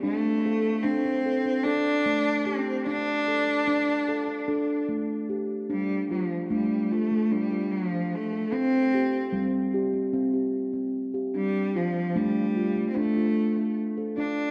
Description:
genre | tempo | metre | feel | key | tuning
world meditative, meditative tuned percussion | 148 BPM (eighths) | 7/8 | straight | D minor pentatonic | A4 = 439 Hz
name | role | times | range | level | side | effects
rich cello | melody | 0.0-14.5 s | F3 to D4 | -29 LUFS | equal | analog delay
steel tongue drum | arpeggios | 0.0-14.5 s | G3 to A4 | -29 LUFS | equal | none
room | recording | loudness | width
wet echo chamber reverb, RT60 1.3 s | echo-heavy mix | -26 LUFS | mono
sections
0.0-5.7 A section; 5.7-14.5 B section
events
none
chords
0.0 D5; 5.7 Dm; 8.5 C5; 11.3 Dm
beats
| 0.04 0.44 0.85 1.25 1.65 2.06 2.46 | 2.87 3.27 3.67 4.08 4.48 4.89 5.29 | 5.70 6.10 6.50 6.91 7.31 7.71 8.12 | 8.52 8.93 9.33 9.73 10.14 10.54 10.95 | 11.35 11.75 12.16 12.56 12.97 13.37 13.77 | 14.18

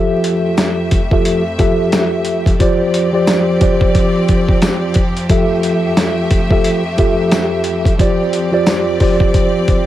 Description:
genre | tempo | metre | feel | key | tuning
hip hop, boom-bap hip-hop | 89 BPM | 4/4 | swing 58% on 16ths | F major | A4 = 440 Hz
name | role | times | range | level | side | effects
mellow tine electric piano | accompaniment | 0.0-9.9 s | F3 to E5 | -15 LUFS | equal | medium stereo tremolo
clear studio string section | sustained chords | 0.0-9.9 s | F2 to E5 | -22 LUFS | left 1 dB | none
dusty soul sampler-style drum kit | drums | 0.2-9.9 s | hi-hat, kick drum, snare drum | -14 LUFS | equal | overdrive
tambourine | percussion | 0.6-8.8 s | none | -32 LUFS | left 5 dB | none
room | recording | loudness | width
light reverb | vinyl crackle | -12 LUFS | side -13 dB against mid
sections
0.0-9.9 A section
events
none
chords
0.0 Fmaj9; 2.6 G7sus4/F; 5.3 Fmaj9; 8.0 G7sus4/F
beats
0.58 1.25 1.93 | 2.60 3.27 3.95 4.62 | 5.30 5.97 6.64 7.32 | 7.99 8.67 9.34

